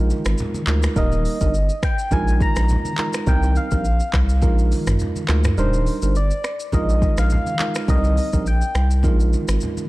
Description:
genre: afrobeats.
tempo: 104 BPM.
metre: 4/4.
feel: swing 55% on 16ths.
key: unclear.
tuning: A4 = 439 Hz.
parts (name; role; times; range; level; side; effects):
tine electric piano; accompaniment; 0.0-9.8 s; G3 to Bb4; -26 LUFS; right 4 dB; none.
saturated sub bass; bass; 0.0-9.6 s; Eb1 to D2; -19 LUFS; equal; none.
afro-pop drum kit; drums; 0.1-9.9 s; finger snaps, handclaps, hi-hat, kick drum, rim click, shaker, toms; -23 LUFS; equal; none.
congas; percussion; 0.1-9.9 s; none; -30 LUFS; left 1 dB; none.
soft struck synth lead; melody; 1.0-9.0 s; C5 to Bb5; -27 LUFS; left 1 dB; chorus.
room: little or no reverb.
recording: dark, warm production.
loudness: -17 LUFS.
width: side -19 dB against mid.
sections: 0.0-9.9 A section.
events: break 5.6-6.7.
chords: 0.0 Bb7sus4; 1.0 Eb; 2.1 Bb7sus4; 3.3 Cm7; 4.4 Bb7sus4; 5.6 Ebmaj7; 6.7 Bb7sus4; 7.9 Cm7; 9.0 Bb7sus4.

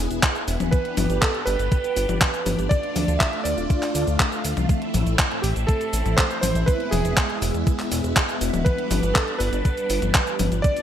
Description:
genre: italo disco.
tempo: 121 BPM.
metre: 4/4.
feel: straight.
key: unclear.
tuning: A4 = 440 Hz.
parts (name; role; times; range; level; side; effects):
phased string machine; sustained chords; 0.0-10.8 s; F3 to G#4; -28 LUFS; equal; ensemble chorus, phaser.
chorused synth bass; bass; 0.0-10.6 s; D1 to E2; -25 LUFS; equal; none.
clean 12-bit digital drum machine; drums; 0.1-10.8 s; cabasa, handclaps, hi-hat, toms; -24 LUFS; left 1 dB; overdrive, studio reverb, gated reverb.
electronic kick drum; drums; 0.2-10.7 s; none; -21 LUFS; equal; overdrive, studio reverb.
warm electric grand piano; melody; 0.7-10.8 s; G4 to E5; -27 LUFS; right 2 dB; digital delay.
room: moderate plate reverb, RT60 1.9 s.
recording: bright 1980s-style digital production.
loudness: -20 LUFS.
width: side -10 dB against mid.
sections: 0.0-10.8 A section.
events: none.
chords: 0.0 E; 0.7 G; 2.7 Dm; 4.7 Am; 6.7 E; 8.7 G.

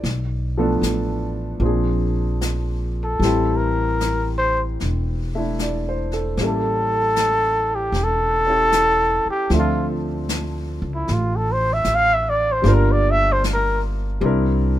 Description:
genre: jazz ballad.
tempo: 76 BPM.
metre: 4/4.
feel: swing 68% on 8ths.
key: unclear.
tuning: A4 = 441 Hz.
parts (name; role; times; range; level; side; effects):
clear grand piano; accompaniment; 0.0-14.8 s; E3 to E5; -25 LUFS; left 1 dB; none.
upright bass; bass; 0.0-14.8 s; E1 to D2; -22 LUFS; equal; none.
jazz brush drum kit; drums; 0.0-14.8 s; brushed snare drum, hi-hat, snare drum; -30 LUFS; left 2 dB; none.
breathy trumpet; melody; 3.0-13.8 s; E4 to F5; -19 LUFS; equal; none.
room: little or no reverb.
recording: minimal, uncompressed stereo recording.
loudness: -18 LUFS.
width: side -13 dB against mid.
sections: 0.0-14.8 A section.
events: trumpet solo 0.0-14.8.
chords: 0.0 Bm7b5; 1.6 Bb9; 3.2 Am7; 6.4 A7b9; 9.5 Dm9; 12.6 Gm7; 14.2 C7.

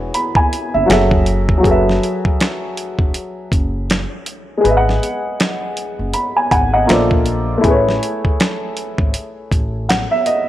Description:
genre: lo-fi hip hop.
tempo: 80 BPM.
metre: 4/4.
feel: swing 59% on 16ths.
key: F# dorian.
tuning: A4 = 440 Hz.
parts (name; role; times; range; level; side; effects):
warm upright piano; accompaniment; 0.0-10.5 s; E3 to B5; -16 LUFS; equal; cassette tape, low-pass filter.
upright bass; bass; 0.0-10.0 s; E1 to A#1; -20 LUFS; equal; none.
dusty soul sampler-style drum kit; drums; 0.1-10.5 s; finger snaps, hi-hat, kick drum, snare drum; -18 LUFS; equal; none.
room: light reverb, studio reverb.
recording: faint mains hum.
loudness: -14 LUFS.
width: side -13 dB against mid.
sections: 0.0-1.6 A section; 1.6-10.5 B section.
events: upright piano fill 6.1-7.6.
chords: 0.0 E6; 0.9 F#m9; 1.6 F#m11; 4.6 G#m7; 6.9 A#maj9; 7.6 Amaj9.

